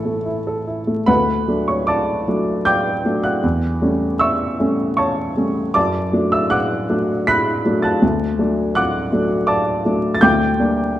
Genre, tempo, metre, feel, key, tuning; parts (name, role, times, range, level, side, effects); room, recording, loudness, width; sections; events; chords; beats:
classical, romantic character piece for solo piano; 72-84 BPM; 3/4; rubato; D major; A4 = 439 Hz
warm baby grand piano; solo; 0.0-11.0 s; A1 to B6; -16 LUFS; equal
wet recital hall reverb, RT60 1.3 s; dark, warm production, vinyl crackle; -16 LUFS; side -13 dB against mid
0.0-1.1 A section; 1.1-11.0 B section
0.0 A; 1.1 D; 3.4 A7/E; 5.8 D/F#; 8.0 D; 10.2 Gm/D
0.26 | 1.08 1.88 2.67 | 3.43 4.21 4.98 | 5.75 6.51 7.28 | 8.02 8.76 9.48 | 10.22 10.96